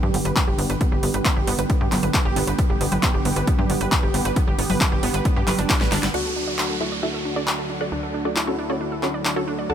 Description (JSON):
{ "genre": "uplifting trance", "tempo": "135 BPM", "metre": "4/4", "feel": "straight", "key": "D major", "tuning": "A4 = 440 Hz", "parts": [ { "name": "analog string pad", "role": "sustained chords", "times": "0.0-9.7 s", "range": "D3 to G4", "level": "-28 LUFS", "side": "equal", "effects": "ensemble chorus, sidechain pumping" }, { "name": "wide unison pluck", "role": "arpeggios", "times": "0.0-9.7 s", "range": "B3 to D5", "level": "-28 LUFS", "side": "right 4 dB", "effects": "sidechain pumping, tape echo" }, { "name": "tight sequencer bass", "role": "bass", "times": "0.0-9.7 s", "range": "G1 to G2", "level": "-28 LUFS", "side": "equal", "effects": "sidechain pumping" }, { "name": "big-room dance drum kit", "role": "drums", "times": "0.0-9.3 s", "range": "congas, crash cymbal, handclaps, hi-hat, snare drum", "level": "-25 LUFS", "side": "equal", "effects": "none" }, { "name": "electronic kick drum", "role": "drums", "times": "0.4-5.8 s", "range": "none", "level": "-21 LUFS", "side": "equal", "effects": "none" }, { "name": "wide unison pluck", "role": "melody", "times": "6.1-9.7 s", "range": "C#4 to A5", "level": "-28 LUFS", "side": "equal", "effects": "sidechain pumping, tape echo" }, { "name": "felt-muted upright piano", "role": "second line", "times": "6.1-9.7 s", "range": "D4 to A4", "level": "-31 LUFS", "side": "left 3 dB", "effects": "ping-pong delay" }, { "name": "downlifter", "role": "sound effects", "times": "6.1-9.7 s", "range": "none", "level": "-31 LUFS", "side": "right 3 dB", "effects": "none" } ], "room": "light reverb, digital ambience", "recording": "none", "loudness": "-19 LUFS", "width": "side -9 dB against mid", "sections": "0.0-6.1 A section; 6.1-9.7 B section", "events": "filter sweep on synth pluck 0.0-6.1; filter sweep on analog synth pad 0.0-6.1; drum fill 5.7-6.1; band accent 6.0", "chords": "0.0 G; 6.1 D" }